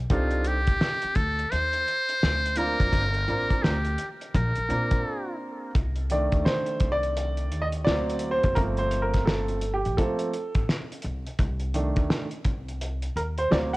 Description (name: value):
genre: hip hop, jazz-hop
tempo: 85 BPM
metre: 4/4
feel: swing 63% on 16ths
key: C dorian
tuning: A4 = 440 Hz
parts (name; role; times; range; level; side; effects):
- upright bass; bass; 0.0-13.8 s; F#1 to Bb2; -29 LUFS; equal; none
- trumpet with metal mute; melody; 0.1-5.4 s; F4 to C5; -27 LUFS; equal; none
- clear concert grand piano; accompaniment; 0.1-13.8 s; Eb3 to F#5; -27 LUFS; right 1 dB; cassette tape
- cloth-damped thuddy drum kit; drums; 0.1-13.8 s; hi-hat, kick drum, snare drum; -26 LUFS; equal; cassette tape
room: small room ambience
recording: home recording on cassette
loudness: -23 LUFS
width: side -21 dB against mid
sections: 0.0-5.7 A section; 5.7-13.8 B section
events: break 5.0-5.7; grand piano solo 5.7-13.8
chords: 0.1 Cm69; 2.2 D7alt; 2.9 Gm11; 4.3 Bb; 5.7 Cm69; 7.9 Daug7; 8.6 Gm11; 11.4 Cm69